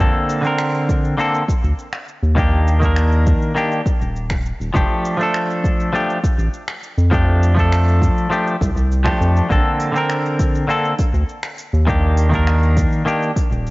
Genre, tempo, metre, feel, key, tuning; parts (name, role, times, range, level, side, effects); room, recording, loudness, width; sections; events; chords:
sunset chillout; 101 BPM; 4/4; straight; A4 = 440 Hz
semi-hollow electric guitar; accompaniment; 0.0-13.3 s; D3 to Bb4; -19 LUFS; equal; auto-pan, cassette tape, analog delay
round analog bass; bass; 0.0-13.7 s; Eb1 to F2; -16 LUFS; equal
deep house drum kit; drums; 0.0-13.7 s; finger snaps, hi-hat, shaker; -30 LUFS; equal; cassette tape
electronic kick drum; drums; 0.0-13.5 s; -19 LUFS; equal; cassette tape
light reverb; home recording on cassette, nothing above 7.6 kHz; -15 LUFS; side -22 dB against mid
0.0-13.7 A section
0.0 Bbmaj9; 2.4 Ebmaj7; 4.8 F69; 9.5 Bbmaj9; 11.9 Ebmaj7